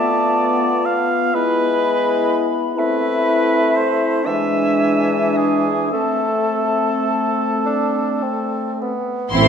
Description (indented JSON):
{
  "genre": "classical, slow romantic movement for symphony orchestra",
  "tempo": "34-43 BPM (dotted quarters)",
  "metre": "6/8",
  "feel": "rubato",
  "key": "A minor",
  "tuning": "A4 = 441 Hz",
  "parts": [
    { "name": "bright clarinet", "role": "second line", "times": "0.0-8.9 s", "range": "B3 to E4", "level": "-25 LUFS", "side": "equal", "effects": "none" },
    { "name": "mellow cor anglais", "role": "second line", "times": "0.0-9.5 s", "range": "G#4 to F5", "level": "-21 LUFS", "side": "right 1 dB", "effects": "none" },
    { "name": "silver concert flute", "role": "second line", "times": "0.0-9.5 s", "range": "E5 to B5", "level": "-25 LUFS", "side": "equal", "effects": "none" },
    { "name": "warm bassoon", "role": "accompaniment", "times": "0.0-9.4 s", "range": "E3 to D4", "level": "-22 LUFS", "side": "equal", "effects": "none" },
    { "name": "dark French horn section", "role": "sustained chords", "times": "0.0-9.5 s", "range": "G#3 to F4", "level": "-22 LUFS", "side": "left 3 dB", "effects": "none" },
    { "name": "rich chamber violin section", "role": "melody", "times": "9.3-9.5 s", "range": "C6", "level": "-17 LUFS", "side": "left 3 dB", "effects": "none" },
    { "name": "rich studio violin section", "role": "second line", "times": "9.3-9.5 s", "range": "E4", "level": "-19 LUFS", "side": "left 2 dB", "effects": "none" },
    { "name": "rich chamber viola section", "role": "accompaniment", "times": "9.3-9.5 s", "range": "E3 to A3", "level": "-19 LUFS", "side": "right 4 dB", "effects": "none" },
    { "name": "dark tuba", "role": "bass", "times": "9.3-9.5 s", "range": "A1", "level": "-19 LUFS", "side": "right 6 dB", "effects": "none" },
    { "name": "rich symphonic cello section", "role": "bass", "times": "9.3-9.5 s", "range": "C4", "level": "-19 LUFS", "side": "right 1 dB", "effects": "none" },
    { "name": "rich symphonic double bass section", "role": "bass", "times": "9.3-9.5 s", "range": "A1", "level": "-18 LUFS", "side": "right 6 dB", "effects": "none" }
  ],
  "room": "wet concert hall reverb, RT60 2.3 s",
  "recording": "minimal, uncompressed stereo recording",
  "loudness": "-16 LUFS",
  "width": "side -7 dB against mid",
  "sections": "0.0-9.3 A section",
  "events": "none",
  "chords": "0.0 Bm7b5/A; 1.4 E/G#; 2.8 Am; 4.3 E7; 5.9 Am"
}